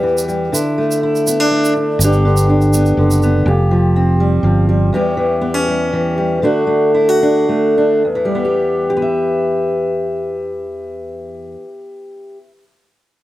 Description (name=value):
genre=acoustic folk duo or small band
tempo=105-123 BPM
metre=3/4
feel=straight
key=E dorian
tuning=A4 = 444 Hz
part: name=fingerpicked steel-string acoustic guitar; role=accompaniment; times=0.0-12.5 s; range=E2 to E5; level=-14 LUFS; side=equal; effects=none
part: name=tube shaker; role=percussion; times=0.2-3.3 s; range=none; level=-23 LUFS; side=right 4 dB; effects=none
part: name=fingered electric bass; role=bass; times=2.0-4.9 s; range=F1 to G1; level=-13 LUFS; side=equal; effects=none
room=little or no reverb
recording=recorded outdoors, with no room sound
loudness=-12 LUFS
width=side -15 dB against mid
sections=0.0-8.1 A section; 8.1-11.5 B section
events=slowing down 4.9-8.1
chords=0.0 Em; 0.5 Dsus2; 2.0 G; 3.5 Fsus2; 4.9 Em6; 6.4 D; 8.1 Em